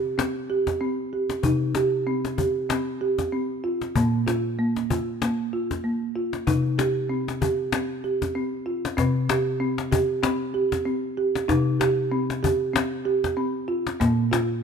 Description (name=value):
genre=world meditative, meditative tuned percussion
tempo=95 BPM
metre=4/4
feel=swing 56% on 16ths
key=C minor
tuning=A4 = 440 Hz
part: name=folk marimba with soft mallets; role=arpeggios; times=0.0-14.6 s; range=Bb2 to G4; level=-23 LUFS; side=right 1 dB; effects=none
part: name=cajon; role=percussion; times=0.2-14.5 s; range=none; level=-27 LUFS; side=left 5 dB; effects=none
room=wet echo chamber reverb, RT60 1.7 s, small room ambience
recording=none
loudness=-22 LUFS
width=side -6 dB against mid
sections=0.0-9.0 A section; 9.0-14.6 B section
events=none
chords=0.0 C5; 4.0 Bb5; 6.5 Cm; 9.0 C5; 14.0 Bb5